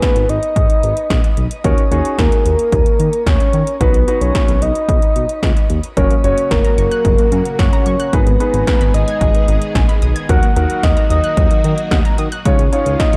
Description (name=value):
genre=synth-pop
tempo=111 BPM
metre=4/4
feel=straight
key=unclear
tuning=A4 = 440 Hz
part: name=soft octave-layered synth lead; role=melody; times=0.0-13.2 s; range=A#4 to F#5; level=-20 LUFS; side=equal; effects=chorus, shimmer reverb
part: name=warm concert grand piano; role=accompaniment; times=0.0-13.2 s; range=C#4 to C#5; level=-27 LUFS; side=equal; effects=shimmer reverb
part: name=80s electronic pad drums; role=drums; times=0.0-13.2 s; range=hi-hat, kick drum, snare drum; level=-18 LUFS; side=equal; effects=none
part: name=smooth synth bass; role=bass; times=0.2-13.2 s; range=F#1 to D#3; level=-20 LUFS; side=equal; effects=transformer saturation
part: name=string machine, full ensemble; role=sustained chords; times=6.0-13.2 s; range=C#3 to G#4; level=-29 LUFS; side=equal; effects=phaser, ensemble chorus, shimmer reverb
part: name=analog pluck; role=arpeggios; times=6.0-13.2 s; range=F#3 to G#6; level=-29 LUFS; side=equal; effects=chorus, shimmer reverb
room=light reverb, digital ambience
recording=dry, gritty hardware recording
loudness=-15 LUFS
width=mono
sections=0.0-13.2 A section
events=none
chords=0.0 G#m; 1.6 D#m; 3.8 B; 6.0 F#; 8.1 G#m; 10.3 D#m; 12.5 C#add9